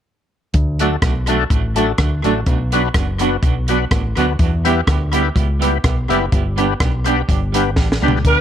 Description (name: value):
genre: ska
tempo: 125 BPM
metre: 4/4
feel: swing 53% on 8ths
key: D major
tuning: A4 = 441 Hz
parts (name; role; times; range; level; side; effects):
- fingered electric bass; bass; 0.5-8.4 s; F#1 to E2; -19 LUFS; equal; none
- compact cocktail drum kit; drums; 0.5-8.4 s; hi-hat, kick drum, rim click, snare drum, toms; -18 LUFS; equal; tape echo
- clean electric guitar; accompaniment; 0.8-8.2 s; F#3 to G4; -21 LUFS; right 11 dB; tremolo, tape echo
- overdriven tonewheel organ; stabs; 0.8-8.2 s; A3 to B4; -21 LUFS; left 12 dB; chorus vibrato, slow rotary speaker
- warm horn section; melody; 8.3-8.4 s; B4; -14 LUFS; right 1 dB; none
room: light reverb, studio reverb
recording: 1960s-style stereo with parts hard left and right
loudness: -14 LUFS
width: side -9 dB against mid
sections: 0.5-8.2 A section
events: drum fill 7.8-8.2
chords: 0.5 D; 2.5 Bm; 4.4 Em; 6.3 G